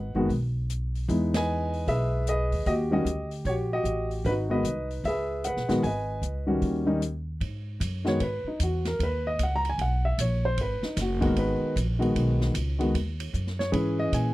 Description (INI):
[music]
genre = jazz piano trio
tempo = 152 BPM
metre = 4/4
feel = swing 64% on 8ths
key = G# minor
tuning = A4 = 441 Hz
[part]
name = warm grand piano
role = melody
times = 0.0-14.3 s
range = D#3 to A#5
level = -27 LUFS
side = equal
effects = none
[part]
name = upright bass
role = bass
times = 0.0-14.3 s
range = F#1 to A#2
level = -28 LUFS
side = equal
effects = none
[part]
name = open jazz drum kit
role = drums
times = 0.3-14.2 s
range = hi-hat, kick drum, ride cymbal, snare drum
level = -35 LUFS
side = equal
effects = none
[sound]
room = little or no reverb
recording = dry, close 1970s-style studio recording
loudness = -25 LUFS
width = side -17 dB against mid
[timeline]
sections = 0.0-7.4 A section; 7.4-14.3 B section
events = band accent 1.3; grand piano solo 7.4-14.3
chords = 0.0 G#m7 (rootless); 1.1 Emaj7; 2.7 D#(#9); 4.2 G#m7; 5.0 C#m7; 5.8 G#m; 6.6 D#7#9; 7.4 G#m7; 13.7 C#m7